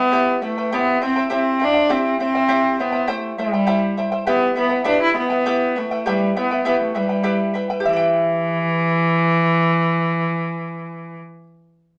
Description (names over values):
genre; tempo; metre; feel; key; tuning
andean folk, Andean ensemble; 67 BPM (dotted quarters); 6/8; straight; E minor; A4 = 445 Hz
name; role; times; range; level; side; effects
rich cello; melody; 0.0-11.2 s; E3 to E4; -21 LUFS; equal; none
charango; accompaniment; 0.0-11.5 s; E4 to G5; -23 LUFS; equal; none
room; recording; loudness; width
wet studio reverb, RT60 0.6 s; none; -19 LUFS; mono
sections
0.0-7.8 A section; 7.8-11.4 B section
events
none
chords
0.0 Em; 0.7 C; 4.3 Em